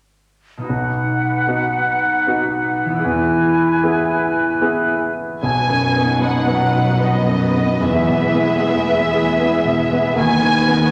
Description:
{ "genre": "cinematic", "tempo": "76 BPM", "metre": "3/4", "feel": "rubato", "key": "B major", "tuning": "A4 = 440 Hz", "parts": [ { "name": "concert harp", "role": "arpeggios", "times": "0.6-10.9 s", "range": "B2 to B4", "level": "-25 LUFS", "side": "equal", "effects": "none" }, { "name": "bright concert flute", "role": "second line", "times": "0.7-5.1 s", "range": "F#5 to G#5", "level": "-26 LUFS", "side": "equal", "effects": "none" }, { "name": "warm clarinet", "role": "second line", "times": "0.7-5.1 s", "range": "D#4 to E4", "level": "-27 LUFS", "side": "equal", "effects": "none" }, { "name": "warm oboe", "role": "second line", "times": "0.7-5.1 s", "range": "B4", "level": "-24 LUFS", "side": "equal", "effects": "none" }, { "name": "clear concert grand piano", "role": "accompaniment", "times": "0.7-10.9 s", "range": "B1 to B4", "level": "-23 LUFS", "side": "equal", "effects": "none" }, { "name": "warm symphonic violin section", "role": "melody", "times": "5.4-10.9 s", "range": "D#5 to G#5", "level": "-21 LUFS", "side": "equal", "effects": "none" }, { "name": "warm symphonic violin section", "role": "second line", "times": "5.4-10.9 s", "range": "D#4 to B4", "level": "-30 LUFS", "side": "equal", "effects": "none" }, { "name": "rich symphonic viola section", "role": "accompaniment", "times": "5.4-10.9 s", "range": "D#3 to B3", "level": "-29 LUFS", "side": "equal", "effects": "none" }, { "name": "rich symphonic cello section", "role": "bass", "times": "5.4-10.9 s", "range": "D#2 to B2", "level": "-24 LUFS", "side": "equal", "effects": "none" } ], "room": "wet scoring stage reverb, RT60 1.7 s", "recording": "faint mains hum", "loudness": "-17 LUFS", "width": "mono", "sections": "0.7-5.4 A section; 5.4-10.9 B section", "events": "none", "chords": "0.7 B; 3.0 E; 5.4 B; 7.8 E; 10.2 B/D#", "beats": "| 0.68 1.48 2.26 | 3.03 3.81 4.61 | 5.42 6.22 7.01 | 7.81 8.60 9.39 | 10.16" }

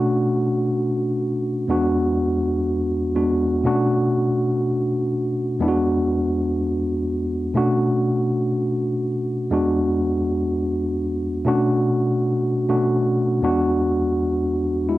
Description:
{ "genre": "disco", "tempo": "free time", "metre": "none", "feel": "none", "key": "B dorian", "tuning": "A4 = 440 Hz", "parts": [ { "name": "mellow tine electric piano", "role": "solo", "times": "0.0-15.0 s", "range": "E2 to F#4", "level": "-19 LUFS", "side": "equal", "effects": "overdrive, medium stereo tremolo, cassette tape" } ], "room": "moderate booth ambience, RT60 0.3 s", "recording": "home recording on cassette", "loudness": "-19 LUFS", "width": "side -16 dB against mid", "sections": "0.0-15.0 A section", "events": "none", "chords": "0.0 Bm9; 1.7 E9; 3.6 Bm9; 5.6 E9; 7.6 Bm9; 9.5 E9; 11.5 Bm9; 13.4 E9", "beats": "free time" }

